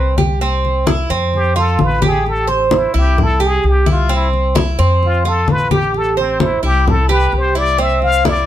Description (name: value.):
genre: latin, Cuban son and guajira.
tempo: 130 BPM.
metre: 4/4.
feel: straight.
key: C major.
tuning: A4 = 442 Hz.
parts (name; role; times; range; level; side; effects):
trumpet with plunger mute; melody; 0.0-8.5 s; C4 to F5; -18 LUFS; left 2 dB; plate reverb.
Cuban tres; arpeggios; 0.0-8.5 s; C4 to C5; -18 LUFS; right 4 dB; none.
upright bass; bass; 0.0-8.4 s; A1 to F2; -16 LUFS; left 1 dB; none.
congas; percussion; 0.2-8.5 s; none; -18 LUFS; left 3 dB; none.
room: light reverb.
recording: none.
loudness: -12 LUFS.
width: side -12 dB against mid.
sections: 0.4-8.5 A section.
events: muted trumpet solo 0.4-8.5.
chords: 0.4 C; 1.3 Fsus2; 2.3 Am7; 3.2 C; 5.0 Fsus2; 5.9 Am7; 6.9 C.